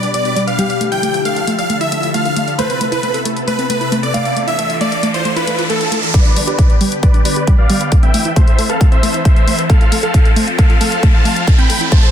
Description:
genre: uplifting trance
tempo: 135 BPM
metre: 4/4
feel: straight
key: A minor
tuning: A4 = 441 Hz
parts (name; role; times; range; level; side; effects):
- big supersaw lead; melody; 0.0-12.1 s; A4 to B5; -19 LUFS; equal; sidechain pumping, low-pass filter, tape echo
- plucky unison lead; second line; 0.0-6.1 s; A4 to G5; -27 LUFS; equal; none
- analog string pad; sustained chords; 0.0-12.1 s; B2 to C5; -22 LUFS; left 1 dB; ensemble chorus, sidechain pumping
- analog pluck; arpeggios; 0.0-12.1 s; G3 to F5; -21 LUFS; right 1 dB; chorus, sidechain pumping, tape echo
- electronic hi-hat; drums; 0.0-12.1 s; none; -24 LUFS; left 3 dB; sidechain pumping on hats
- dark grand piano; second line; 0.6-6.1 s; G4 to F5; -24 LUFS; left 2 dB; digital delay
- riser; sound effects; 3.8-12.1 s; none; -24 LUFS; equal; none
- electronic kick drum; drums; 6.1-12.0 s; none; -10 LUFS; equal; none
room: light reverb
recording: dense, heavily limited modern master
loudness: -11 LUFS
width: side -9 dB against mid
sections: 0.0-6.1 A section; 6.1-12.1 B section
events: filter sweep on synth pluck 0.0-6.1; riser 3.8-6.1, 6.1-12.1; build-up 6.1-12.1; filter sweep on supersaw synth 6.1-12.1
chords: 0.0 G; 0.8 Dmadd9; 2.6 Amadd9; 4.4 Dmadd9; 6.1 G; 7.9 Amadd9; 9.7 F; 11.5 Amadd9

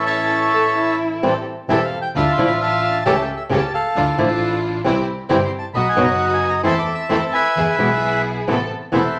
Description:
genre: tango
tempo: 132 BPM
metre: 4/4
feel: rubato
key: A minor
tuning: A4 = 440 Hz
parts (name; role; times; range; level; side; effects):
- bandoneon; melody; 0.0-9.2 s; A4 to E6; -22 LUFS; equal; none
- flamenco guitar; accompaniment; 0.0-9.0 s; B2 to G4; -23 LUFS; equal; none
- rich studio string section; stabs; 0.0-9.1 s; B3 to A4; -26 LUFS; equal; none
- dark double bass; bass; 0.0-9.1 s; E1 to E2; -29 LUFS; equal; none
- rich cello; second line; 0.5-1.2 s; E4 to A4; -25 LUFS; equal; none
room: wet large studio reverb, RT60 0.9 s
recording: none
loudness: -19 LUFS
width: mono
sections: 0.0-1.2 A section; 1.2-9.2 B section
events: none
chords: 0.0 A; 1.2 Am7; 2.2 Dmadd9; 3.1 A7/C#; 4.0 Dmadd9; 4.9 C; 5.7 B; 6.7 Am/E; 7.6 E; 8.5 Amadd9

